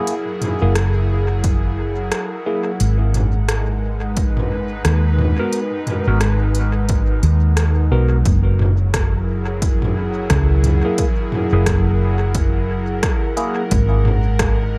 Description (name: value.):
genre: ambient dub.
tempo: 88 BPM.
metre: 4/4.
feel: swing 60% on 16ths.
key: unclear.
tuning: A4 = 440 Hz.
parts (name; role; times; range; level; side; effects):
airy breathy pad; sustained chords; 0.0-14.8 s; F#3 to F#5; -26 LUFS; equal; chorus.
overdriven tine electric piano; stabs; 0.0-13.6 s; A#3 to A#4; -29 LUFS; equal; phaser, dub echo.
organic electronic drum kit; drums; 0.1-14.6 s; hi-hat, rim click, toms; -27 LUFS; equal; overdrive, dub echo.
hollow-body short-scale fingered electric bass; bass; 0.6-14.8 s; F#1 to D#2; -19 LUFS; equal; none.
electronic kick drum; drums; 1.4-14.6 s; none; -22 LUFS; equal; overdrive.
room: little or no reverb.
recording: dark, warm production.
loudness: -18 LUFS.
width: mono.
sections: 0.0-8.3 A section; 8.3-14.8 B section.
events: none.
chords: 0.0 F#7; 2.8 G#m7; 8.3 F#7; 13.7 G#m7.